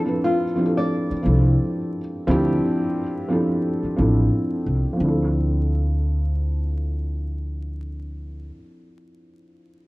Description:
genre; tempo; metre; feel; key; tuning
lo-fi hip hop; 88 BPM; 4/4; swing 56% on 16ths; D minor; A4 = 437 Hz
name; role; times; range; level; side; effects
felt-muted upright piano; accompaniment; 0.0-9.9 s; F3 to B4; -23 LUFS; equal; cassette tape, low-pass filter
nylon-string guitar; melody; 0.2-4.3 s; F4 to D5; -25 LUFS; left 1 dB; low-pass filter
upright bass; bass; 1.1-8.5 s; A1 to D2; -21 LUFS; equal; none
room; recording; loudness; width
moderate plate reverb, RT60 2.8 s; worn, warbling old tape, cassette tape, vinyl crackle, warbly pitch drift; -19 LUFS; side -21 dB against mid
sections
0.0-5.0 A section; 5.0-7.7 B section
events
filter sweep 0.0-5.0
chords
0.0 Dm7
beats
0.23 0.91 1.59 | 2.28 2.96 3.64 4.32 | 5.00 5.68 6.37 7.05

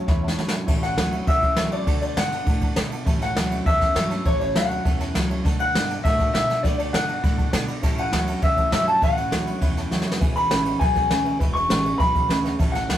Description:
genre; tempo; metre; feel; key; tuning
rockabilly; 202 BPM; 4/4; straight; A major; A4 = 440 Hz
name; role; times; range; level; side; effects
electric guitar through a small old amp; melody; 0.0-13.0 s; C#5 to C#6; -23 LUFS; left 1 dB; none
picked steel-string acoustic guitar; accompaniment; 0.0-13.0 s; A2 to A4; -32 LUFS; equal; none
electric guitar through a small old amp; riff; 0.0-13.0 s; E2 to B3; -29 LUFS; right 1 dB; none
upright bass; bass; 0.0-13.0 s; E1 to B2; -30 LUFS; equal; none
honky-tonk upright piano; accompaniment; 0.1-13.0 s; B4 to B5; -37 LUFS; right 3 dB; none
jazz brush drum kit; drums; 0.1-13.0 s; crash cymbal, kick drum, ride cymbal, snare drum; -23 LUFS; equal; none
room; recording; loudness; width
moderate studio reverb, RT60 0.6 s; rough rehearsal-room recording; -19 LUFS; side -11 dB against mid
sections
0.7-13.0 A section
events
drum fill 0.1-0.7, 9.9; honky-tonk piano fill 9.3-10.2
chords
0.0 A6; 1.9 D6; 3.1 A6; 5.4 D6; 7.8 A6; 10.2 E6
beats
0.08 0.38 | 0.68 0.97 1.27 1.57 | 1.87 2.17 2.47 2.77 | 3.06 3.36 3.66 3.96 | 4.26 4.55 4.85 5.15 | 5.45 5.75 6.04 6.34 | 6.64 6.93 7.23 7.53 | 7.83 8.12 8.42 8.72 | 9.02 9.31 9.61 9.91 | 10.21 10.51 10.80 11.10 | 11.40 11.70 11.99 12.29 | 12.59 12.89

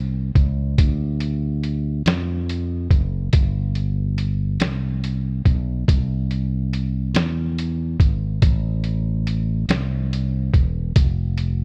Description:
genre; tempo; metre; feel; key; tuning
slow gospel; 47 BPM (dotted quarters); 6/8; straight; C major; A4 = 439 Hz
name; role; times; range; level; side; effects
fingered electric bass; bass; 0.0-11.6 s; E1 to F2; -24 LUFS; equal; none
lo-fi sampler-style drum kit; drums; 0.4-11.6 s; hi-hat, kick drum, snare drum; -21 LUFS; equal; none
room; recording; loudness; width
little or no reverb; none; -21 LUFS; mono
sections
0.0-11.6 A section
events
none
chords
none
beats
| 0.78 2.06 | 3.33 4.60 | 5.88 7.15 | 8.42 9.69 | 10.96

